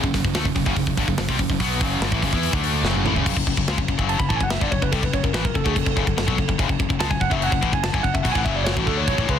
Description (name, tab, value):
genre	heavy metal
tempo	144 BPM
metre	4/4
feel	straight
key	F# minor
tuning	A4 = 441 Hz
part	distorted electric guitar	riff	0.0-9.4 s	F#2 to E4	-24 LUFS	left 10 dB	overdrive
part	scooped high-gain guitar	riff	0.0-3.3 s	F#2 to E4	-26 LUFS	right 14 dB	distortion
part	growling fingered electric bass	bass	0.0-9.4 s	F#1 to E2	-26 LUFS	right 1 dB	overdrive
part	tight metal drum kit	drums	0.0-9.4 s	crash cymbal, hi-hat, kick drum, snare drum, toms	-23 LUFS	equal	none
part	bright tine electric piano	melody	4.1-9.4 s	F#4 to B5	-26 LUFS	right 3 dB	medium stereo tremolo
room	light reverb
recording	dense, heavily limited modern master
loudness	-19 LUFS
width	side -9 dB against mid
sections	0.0-3.3 A section; 3.3-9.4 B section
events	drum fill 2.8-3.3; tine electric piano solo 3.3-9.4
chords	0.0 F#m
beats	0.35 0.77 1.18 | 1.60 2.01 2.43 2.85 | 3.26 3.68 4.09 4.51 | 4.92 5.34 5.76 6.17 | 6.59 7.00 7.42 7.84 | 8.25 8.67 9.08